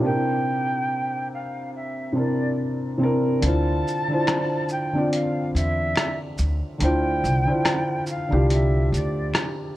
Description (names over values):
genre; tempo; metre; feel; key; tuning
lo-fi hip hop; 71 BPM; 4/4; swing 57% on 16ths; unclear; A4 = 441 Hz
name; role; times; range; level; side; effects
breathy reedy jazz flute; melody; 0.0-9.3 s; D5 to A5; -28 LUFS; right 1 dB; low-pass filter
felt-muted upright piano; accompaniment; 0.0-9.8 s; C3 to D5; -24 LUFS; equal; low-pass filter
upright bass; bass; 3.4-9.3 s; C2 to E2; -22 LUFS; equal; none
dusty soul sampler-style drum kit; drums; 3.4-9.6 s; hi-hat, rim click, shaker; -26 LUFS; equal; none
finger snap; percussion; 4.3-9.6 s; none; -37 LUFS; left 4 dB; none
room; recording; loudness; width
light reverb; worn, warbling old tape, cassette tape, warbly pitch drift; -20 LUFS; side -15 dB against mid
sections
0.0-3.4 A section; 3.4-9.8 B section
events
filter sweep 0.0-3.4; kick muted 3.4-9.8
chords
0.0 C9; 3.4 Dm7